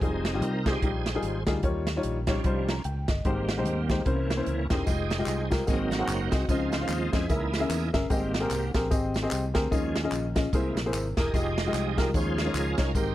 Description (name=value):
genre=uptempo gospel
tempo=148 BPM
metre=4/4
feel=swing 59% on 8ths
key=Ab major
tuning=A4 = 440 Hz
part: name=warm upright piano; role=accompaniment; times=0.0-13.1 s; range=Ab2 to Bb5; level=-30 LUFS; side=left 2 dB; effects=none
part: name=bright tonewheel organ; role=sustained chords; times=0.0-13.1 s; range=E3 to Eb5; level=-32 LUFS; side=right 4 dB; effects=slow rotary speaker, chorus vibrato
part: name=fingered electric bass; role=bass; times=0.0-13.1 s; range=E1 to F2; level=-31 LUFS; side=equal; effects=none
part: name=swinging big-band drum kit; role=drums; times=0.0-13.1 s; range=hi-hat, kick drum, snare drum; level=-30 LUFS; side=equal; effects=none
part: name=tambourine and handclaps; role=percussion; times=4.9-13.1 s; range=none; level=-41 LUFS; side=left 1 dB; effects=none
room=small room ambience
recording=dry, close 1970s-style studio recording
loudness=-25 LUFS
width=side -14 dB against mid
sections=0.0-13.1 A section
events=tonewheel organ solo 0.0-13.1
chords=0.0 Fm9; 1.6 Eb9; 3.3 Abmaj7; 4.1 C7b9; 4.9 Fm9; 5.7 Ab7; 6.5 Dbmaj9; 7.3 Dbm6; 8.1 Abmaj7; 9.7 Eb9sus4; 10.5 C7b13; 11.3 Fm9; 12.1 Eb9sus4